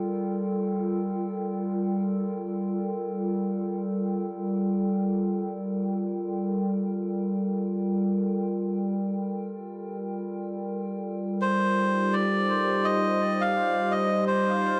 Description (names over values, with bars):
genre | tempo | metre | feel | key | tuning
ambient | free time | none | none | G minor | A4 = 441 Hz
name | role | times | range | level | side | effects
warbly tape-like pad | sustained chords | 0.0-14.8 s | G3 to G5 | -29 LUFS | equal | chorus, built-in reverb
melodica | melody | 11.4-14.8 s | C5 to F5 | -27 LUFS | equal | dub echo
room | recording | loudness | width
wet echo chamber reverb, RT60 1.2 s, small room ambience | dark, warm production | -28 LUFS | mono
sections
0.0-14.8 A section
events
none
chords
0.0 Gm7; 11.4 Cmadd9/G